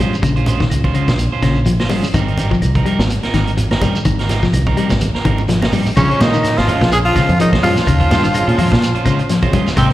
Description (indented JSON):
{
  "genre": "afrobeat",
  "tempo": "126 BPM",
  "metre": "4/4",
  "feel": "swing 56% on 16ths",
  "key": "Bb dorian",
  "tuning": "A4 = 440 Hz",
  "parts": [
    { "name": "electric guitar at the edge of break-up", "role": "arpeggios", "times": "0.0-9.9 s", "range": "C3 to G3", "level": "-19 LUFS", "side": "left 3 dB", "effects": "none" },
    { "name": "electric guitar at the edge of break-up", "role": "stabs", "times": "0.0-9.9 s", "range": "G3 to C5", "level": "-23 LUFS", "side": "right 6 dB", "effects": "slapback echo" },
    { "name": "fingered electric bass", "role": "bass", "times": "0.0-9.9 s", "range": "G1 to Bb2", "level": "-17 LUFS", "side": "equal", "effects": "none" },
    { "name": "shekere", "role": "percussion", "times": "0.0-9.9 s", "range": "none", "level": "-26 LUFS", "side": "right 1 dB", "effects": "slapback echo" },
    { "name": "congas", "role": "percussion", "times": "0.1-9.8 s", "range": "none", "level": "-23 LUFS", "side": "equal", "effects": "slapback echo" },
    { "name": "vintage drum kit", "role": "drums", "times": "0.2-9.9 s", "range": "crash cymbal, hi-hat, kick drum, snare drum", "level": "-20 LUFS", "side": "equal", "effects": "none" },
    { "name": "claves", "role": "percussion", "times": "0.2-9.9 s", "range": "none", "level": "-33 LUFS", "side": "left 2 dB", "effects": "none" },
    { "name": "raspy tenor saxophone", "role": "melody", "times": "6.0-9.9 s", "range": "C4 to Ab4", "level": "-18 LUFS", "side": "left 1 dB", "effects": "slapback echo" },
    { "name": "breathy alto saxophone", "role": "second line", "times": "6.0-9.9 s", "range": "C4 to Ab4", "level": "-25 LUFS", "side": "right 4 dB", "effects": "none" },
    { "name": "raspy baritone saxophone", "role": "second line", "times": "6.0-9.9 s", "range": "C3 to Ab3", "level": "-26 LUFS", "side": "left 1 dB", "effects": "slapback echo" },
    { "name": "combo organ", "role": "accompaniment", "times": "6.1-9.9 s", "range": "Ab3 to Ab4", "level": "-26 LUFS", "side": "left 1 dB", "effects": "slapback echo" }
  ],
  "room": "little or no reverb",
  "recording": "live gig heard through the venue's PA, recital hall reverb",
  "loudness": "-12 LUFS",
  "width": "side -15 dB against mid",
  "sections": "0.0-6.0 A section; 6.0-9.9 B section",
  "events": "drum fill 5.0-6.0",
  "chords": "0.0 Bbm9; 2.2 Abmaj9; 6.0 Bbm9"
}